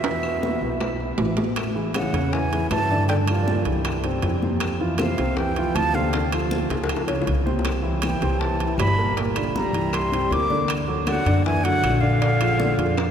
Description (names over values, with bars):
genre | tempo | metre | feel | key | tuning
Afro-Cuban jazz | 158 BPM | 4/4 | straight | unclear | A4 = 439 Hz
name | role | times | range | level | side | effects
breathy concert flute | melody | 0.0-13.1 s | D5 to D6 | -27 LUFS | right 2 dB | none
breathy tenor saxophone | second line | 0.0-13.1 s | Bb2 to Bb3 | -29 LUFS | left 3 dB | none
dark baby grand piano | accompaniment | 0.0-13.1 s | Bb2 to E5 | -26 LUFS | right 2 dB | none
upright bass | bass | 0.0-13.1 s | G1 to G2 | -25 LUFS | equal | none
bongos | percussion | 0.0-13.1 s | none | -33 LUFS | left 4 dB | none
congas | percussion | 0.0-13.1 s | none | -32 LUFS | left 1 dB | none
timbales | percussion | 0.0-13.1 s | none | -31 LUFS | right 4 dB | none
claves | percussion | 0.2-13.1 s | none | -38 LUFS | left 2 dB | none
room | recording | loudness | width
wet cathedral reverb, RT60 6.4 s | recorded in a church or concert hall | -20 LUFS | side -8 dB against mid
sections
0.0-1.6 A section; 1.6-13.1 B section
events
drum fill 0.0-1.6, 6.7-7.7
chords
0.0 E; 1.6 Amaj7; 3.1 Gm7; 3.9 C; 4.6 Fsus2; 6.1 Dm7; 6.9 C#; 7.7 C6; 9.2 Gm7; 9.9 C9; 10.7 D; 12.2 Bb7